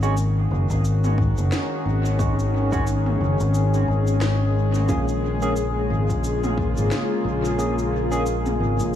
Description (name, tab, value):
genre	ambient dub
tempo	89 BPM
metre	4/4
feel	swing 58% on 16ths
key	unclear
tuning	A4 = 440 Hz
part	warbly tape-like pad	sustained chords	0.0-9.0 s	Db3 to Ab4	-25 LUFS	left 1 dB	chorus, built-in reverb
part	barky tine electric piano	stabs	0.0-8.2 s	Ab3 to Ab4	-30 LUFS	right 2 dB	overdrive, lush chorus, dub echo
part	fingered electric bass	bass	0.0-9.0 s	Gb1 to Bb1	-22 LUFS	left 1 dB	tube saturation
part	organic electronic drum kit	drums	0.0-8.9 s	cabasa, snare drum, toms	-32 LUFS	equal	dub echo
part	electronic kick drum	drums	0.7-6.7 s	none	-26 LUFS	left 1 dB	overdrive
room	light reverb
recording	small room ambience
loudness	-19 LUFS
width	side -10 dB against mid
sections	0.0-9.0 A section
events	kick drops out 7.6-9.0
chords	0.0 Ab7sus4; 4.9 Bbm7